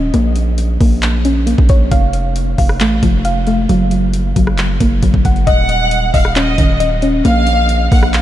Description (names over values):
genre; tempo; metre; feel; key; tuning
hip hop, trap; 135 BPM; 4/4; half-time; Bb harmonic minor; A4 = 440 Hz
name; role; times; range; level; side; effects
soft round pluck; arpeggios; 0.0-8.2 s; Eb3 to Gb5; -16 LUFS; left 1 dB; chorus, tape echo
distorted 808-style bass; bass; 0.0-8.2 s; Eb1 to Bb1; -16 LUFS; equal; distortion
trap drum kit; drums; 0.1-8.2 s; handclaps, hi-hat, kick drum, rim click; -16 LUFS; equal; vintage 12-bit sampler grit
warm symphonic violin section; second line; 5.5-8.2 s; Eb5 to Gb5; -17 LUFS; right 1 dB; tape echo
room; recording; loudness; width
light reverb, digital ambience; none; -11 LUFS; side -12 dB against mid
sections
0.0-5.5 A section; 5.5-8.2 B section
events
none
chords
0.1 Bbm; 1.9 F; 3.7 Gb; 5.5 Ebm7; 7.2 Bb5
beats
| 0.14 0.58 1.03 1.47 | 1.92 2.36 2.81 3.25 | 3.69 4.14 4.58 5.03 | 5.47 5.92 6.36 6.80 | 7.25 7.69 8.14